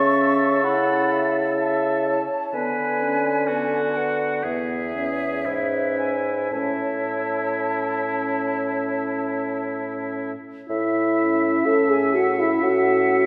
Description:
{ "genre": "classical, slow romantic movement for wind quintet", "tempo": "55-64 BPM", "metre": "4/4", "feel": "rubato", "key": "A major", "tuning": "A4 = 441 Hz", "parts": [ { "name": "hollow concert flute", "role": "melody", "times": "0.0-13.3 s", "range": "E5 to C#6", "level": "-31 LUFS", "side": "equal", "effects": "none" }, { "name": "clear oboe", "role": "second line", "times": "0.0-13.3 s", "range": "E4 to E5", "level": "-30 LUFS", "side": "equal", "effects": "none" }, { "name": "mellow French horn", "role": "accompaniment", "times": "0.0-13.3 s", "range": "B3 to A4", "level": "-27 LUFS", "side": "equal", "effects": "none" }, { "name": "mellow clarinet", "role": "accompaniment", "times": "0.0-13.3 s", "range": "C#4 to F#5", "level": "-32 LUFS", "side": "equal", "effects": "none" }, { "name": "warm bassoon", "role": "bass", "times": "0.0-13.3 s", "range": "E2 to D3", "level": "-28 LUFS", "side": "equal", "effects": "none" } ], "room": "wet concert hall reverb, RT60 1.8 s", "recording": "recorded in a church or concert hall", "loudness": "-22 LUFS", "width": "mono", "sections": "0.0-10.7 A section; 10.7-13.3 A section", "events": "none", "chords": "0.0 A/C#; 2.5 Bm/D; 4.4 E; 6.5 A" }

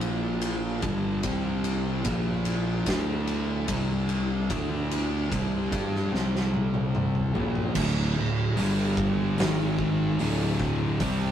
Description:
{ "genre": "stoner and doom metal", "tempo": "74 BPM", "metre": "4/4", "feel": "straight", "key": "D minor", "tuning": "A4 = 440 Hz", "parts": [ { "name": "thick fuzz guitar", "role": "riff", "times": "0.0-11.3 s", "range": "D2 to G4", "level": "-31 LUFS", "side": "left 3 dB", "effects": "distortion" }, { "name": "thick fuzz guitar", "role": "riff", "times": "0.0-11.3 s", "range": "D2 to G4", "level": "-31 LUFS", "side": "right 4 dB", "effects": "distortion" }, { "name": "fuzz picked electric bass", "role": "bass", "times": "0.0-11.3 s", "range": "D1 to G2", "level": "-30 LUFS", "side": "equal", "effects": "overdrive" }, { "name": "oversized low-tuned drum kit", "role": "drums", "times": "0.0-11.2 s", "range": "crash cymbal, hi-hat, kick drum, ride cymbal, snare drum, toms", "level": "-30 LUFS", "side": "equal", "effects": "none" }, { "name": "sludgy distorted guitar", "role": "riff", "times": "7.8-11.3 s", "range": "D2 to C4", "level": "-29 LUFS", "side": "left 1 dB", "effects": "overdrive" } ], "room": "moderate small room reverb, RT60 0.5 s", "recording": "rough rehearsal-room recording", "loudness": "-24 LUFS", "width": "side -10 dB against mid", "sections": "0.0-7.8 A section; 7.8-11.3 B section", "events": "drum fill 6.1-7.8", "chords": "0.0 Bb5; 1.2 C5; 2.1 Bb5; 2.9 D5; 3.7 C5; 4.5 D5; 5.3 C5; 7.8 D5; 8.6 G5; 9.4 G#5; 10.2 D5" }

